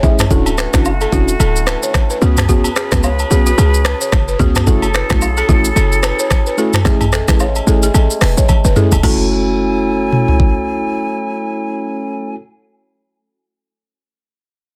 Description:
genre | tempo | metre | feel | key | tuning
afrobeats | 110 BPM | 4/4 | swing 58% on 16ths | F# minor | A4 = 435 Hz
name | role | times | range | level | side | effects
mellow tine electric piano | accompaniment | 0.0-12.3 s | A3 to G#4 | -21 LUFS | equal | none
mellow woodwind section | sustained chords | 0.0-12.3 s | C#3 to G#5 | -24 LUFS | equal | none
balafon | riff | 0.0-10.6 s | F#4 to E5 | -24 LUFS | equal | digital delay
short 808-style bass | bass | 0.0-12.3 s | D1 to C#2 | -18 LUFS | equal | none
afro-pop drum kit | drums | 0.0-10.5 s | crash cymbal, finger snaps, hi-hat, kick drum, rim click, shaker, toms | -17 LUFS | equal | soft clipping on snare
agogo bells and woodblock | percussion | 0.2-9.3 s | none | -28 LUFS | equal | none
room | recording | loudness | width
light reverb | dense, heavily limited modern master | -14 LUFS | mono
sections
0.0-9.0 A section; 9.0-13.4 B section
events
drum fill 8.5-9.0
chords
0.3 Dmaj9; 2.2 C#7sus4; 4.7 F#m7; 6.9 Amaj7; 9.0 F#m7

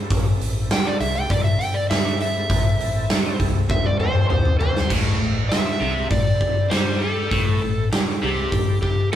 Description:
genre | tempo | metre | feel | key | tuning
blues rock power trio and southern rock | 100 BPM | 4/4 | straight | A minor | A4 = 440 Hz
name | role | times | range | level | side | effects
overdriven tonewheel organ | sustained chords | 0.0-9.2 s | C4 to C#5 | -36 LUFS | right 3 dB | slow rotary speaker, chorus vibrato
vintage muted fingered electric bass | bass | 0.0-8.8 s | A1 to G2 | -28 LUFS | equal | none
huge arena drum kit | drums | 0.1-9.2 s | crash cymbal, hi-hat, kick drum, snare drum, toms | -20 LUFS | equal | none
overdriven slide guitar | melody | 0.7-9.2 s | G4 to G5 | -25 LUFS | equal | none
distorted electric guitar | riff | 4.9-9.2 s | A2 to G3 | -26 LUFS | left 1 dB | distortion
room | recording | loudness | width
light reverb | band playing live in one room | -18 LUFS | side -11 dB against mid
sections
0.0-4.9 A section; 4.9-9.2 B section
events
electric slide guitar solo 0.0-4.9; drum fill 3.7-4.9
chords
0.0 Am

